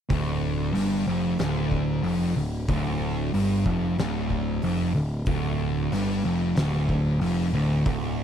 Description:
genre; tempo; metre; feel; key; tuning
stoner and doom metal; 93 BPM; 4/4; straight; D minor; A4 = 440 Hz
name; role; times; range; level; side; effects
fuzz guitar; riff; 0.1-8.2 s; D2 to G2; -24 LUFS; equal; distortion
overdriven picked electric bass; bass; 0.1-8.2 s; D1 to G1; -30 LUFS; equal; none
oversized low-tuned drum kit; drums; 0.1-8.0 s; hi-hat, kick drum, snare drum; -32 LUFS; equal; none
room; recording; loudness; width
little or no reverb; none; -23 LUFS; side -9 dB against mid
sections
0.1-8.2 A section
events
none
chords
0.1 Dm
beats
| 0.11 0.75 1.40 2.04 | 2.69 3.33 3.98 4.63 | 5.27 5.92 6.57 7.21 | 7.86

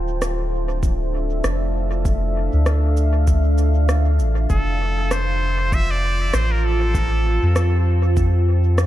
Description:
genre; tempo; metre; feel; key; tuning
ambient dub; 98 BPM; 4/4; swing 56% on 16ths; D minor; A4 = 439 Hz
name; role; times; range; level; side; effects
deep dark ambient pad; sustained chords; 0.0-8.9 s; D4 to A5; -26 LUFS; right 1 dB; chorus, built-in reverb
soft dub sub bass; bass; 0.0-8.9 s; D1 to F2; -18 LUFS; equal; none
electronic rim click and cabasa; drums; 0.2-8.9 s; none; -28 LUFS; equal; studio reverb, dub echo
electronic kick drum; drums; 0.8-8.3 s; none; -20 LUFS; equal; overdrive, studio reverb
trumpet with straight mute; melody; 4.5-7.9 s; A4 to E5; -25 LUFS; equal; dub echo
room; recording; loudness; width
little or no reverb; none; -17 LUFS; side -14 dB against mid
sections
0.0-8.9 A section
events
none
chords
0.0 Dm7; 4.5 Fmaj7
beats
0.21 0.83 1.44 | 2.05 2.66 3.28 3.89 | 4.50 5.11 5.72 6.34 | 6.95 7.56 8.17 8.79

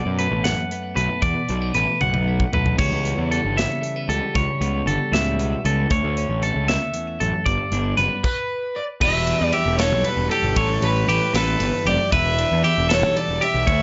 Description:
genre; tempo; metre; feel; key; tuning
math rock and midwest emo; 77 BPM (dotted quarters); 6/8; straight; unclear; A4 = 440 Hz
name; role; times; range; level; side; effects
twelve-string electric guitar; accompaniment; 0.0-13.8 s; D2 to G4; -30 LUFS; equal; none
clean electric guitar; arpeggios; 0.0-13.8 s; G4 to F#5; -26 LUFS; equal; digital delay
fuzz picked electric bass; bass; 0.1-13.8 s; E1 to F#2; -25 LUFS; equal; overdrive
modern studio drum kit; drums; 0.2-13.8 s; crash cymbal, hi-hat, kick drum, ride cymbal, snare drum, splash cymbal, toms; -29 LUFS; equal; none
overdriven semi-hollow guitar; melody; 8.2-13.8 s; A4 to E5; -25 LUFS; equal; none
room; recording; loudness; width
light reverb; nothing above 7.6 kHz; -21 LUFS; mono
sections
0.0-9.0 A section; 9.0-13.8 B section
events
drum fill 2.0-2.8; stop 8.2-9.0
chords
0.0 Bm7; 2.8 A13; 5.9 Dmaj9; 7.5 G; 9.0 Em7; 10.6 A7; 12.1 Em7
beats
0.45 | 1.23 2.01 | 2.79 3.57 | 4.35 5.13 | 5.91 6.68 | 7.46 8.24 | 9.02 9.79 | 10.57 11.35 | 12.12 12.90 | 13.68

